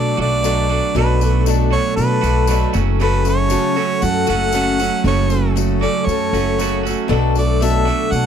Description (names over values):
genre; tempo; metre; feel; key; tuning
folk rock and heartland rock; 117 BPM; 4/4; straight; unclear; A4 = 440 Hz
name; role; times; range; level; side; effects
clear harmonica; melody; 0.0-8.3 s; B4 to F#5; -21 LUFS; right 2 dB; none
picked swing-style acoustic guitar; accompaniment; 0.0-8.3 s; F#2 to A4; -21 LUFS; left 11 dB; none
electric guitar at the edge of break-up; riff; 0.0-8.3 s; F#2 to F#4; -21 LUFS; right 19 dB; none
upright bass; bass; 0.0-8.3 s; F#1 to B2; -18 LUFS; left 1 dB; none
tambourine; percussion; 0.4-8.2 s; none; -33 LUFS; left 21 dB; none
room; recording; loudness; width
little or no reverb; dry, close 1970s-style studio recording; -14 LUFS; side -8 dB against mid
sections
0.0-8.3 A section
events
none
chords
0.0 Bm7; 2.7 F#m; 7.1 Bm7